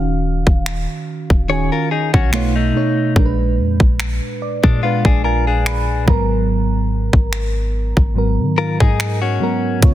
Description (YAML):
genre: contemporary R&B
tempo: 72 BPM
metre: 4/4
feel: swing 54% on 16ths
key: unclear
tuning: A4 = 441 Hz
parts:
  - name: mellow FM electric piano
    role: accompaniment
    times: 0.0-9.9 s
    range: Ab2 to Cb6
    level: -20 LUFS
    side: right 2 dB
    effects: chorus, phaser
  - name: warm 808-style bass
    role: bass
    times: 0.0-9.9 s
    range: Eb1 to Eb3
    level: -19 LUFS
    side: equal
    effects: none
  - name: trap drum kit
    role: drums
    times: 0.5-9.9 s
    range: finger snaps, hi-hat, kick drum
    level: -16 LUFS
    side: equal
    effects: soft clipping on snare
  - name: direct-recorded clean electric guitar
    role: arpeggios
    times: 1.5-9.8 s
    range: Ab3 to Db5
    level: -21 LUFS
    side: left 8 dB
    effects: tape echo
room: little or no reverb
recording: dense, heavily limited modern master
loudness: -14 LUFS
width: side -13 dB against mid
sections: 0.0-9.9 A section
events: FM electric piano fill 4.0-6.5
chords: 0.0 Ebm9; 2.3 B9; 3.2 Bb7b9; 6.1 Abm9